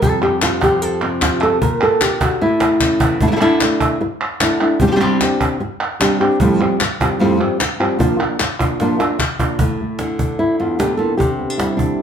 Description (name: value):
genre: flamenco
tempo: 150 BPM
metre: 4/4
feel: straight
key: unclear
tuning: A4 = 440 Hz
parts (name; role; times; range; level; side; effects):
- flamenco guitar; melody; 0.0-12.0 s; E2 to Bb4; -16 LUFS; equal; none
- cajon; percussion; 0.0-12.0 s; none; -21 LUFS; equal; none
- palmas hand claps; percussion; 0.2-9.6 s; none; -21 LUFS; equal; none
room: wet large studio reverb, RT60 0.8 s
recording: band playing live in one room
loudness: -14 LUFS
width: side -8 dB against mid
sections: 0.0-3.2 A section; 3.2-9.6 B section; 9.6-12.0 C section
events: nylon-string guitar solo 0.0-3.2; drum fill 2.6-3.2, 8.8-9.6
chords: 0.0 Fsus2; 1.6 Bb; 2.4 A; 3.2 Asus4; 4.8 Csus2; 6.4 Fadd9; 8.0 Bb; 9.6 Asus4; 11.2 Csus2